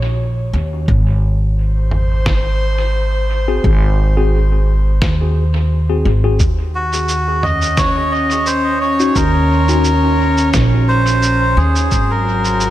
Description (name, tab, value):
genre	ambient dub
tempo	87 BPM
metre	4/4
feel	swing 55% on 16ths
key	Eb dorian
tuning	A4 = 439 Hz
part	airy breathy pad	sustained chords	0.0-12.7 s	Gb3 to Db5	-22 LUFS	equal	chorus
part	upright bass	bass	0.0-12.7 s	Ab1 to Eb2	-15 LUFS	equal	none
part	electronic kick drum	drums	0.9-12.1 s	none	-18 LUFS	equal	none
part	lo-fi sampler-style drum kit	drums	1.9-12.7 s	shaker, snare drum, toms	-24 LUFS	right 1 dB	dub echo
part	tine electric piano	stabs	3.5-9.9 s	C4 to Ab4	-23 LUFS	left 5 dB	overdrive, fast stereo tremolo, dub echo
part	melodica	melody	6.7-12.7 s	Gb4 to Eb5	-16 LUFS	equal	dub echo
room	light reverb, digital ambience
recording	none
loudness	-12 LUFS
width	side -14 dB against mid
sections	0.0-12.7 A section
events	none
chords	0.0 Eb7(no3); 0.9 Ab7; 6.4 Eb7(no3); 11.9 Ab7(no3)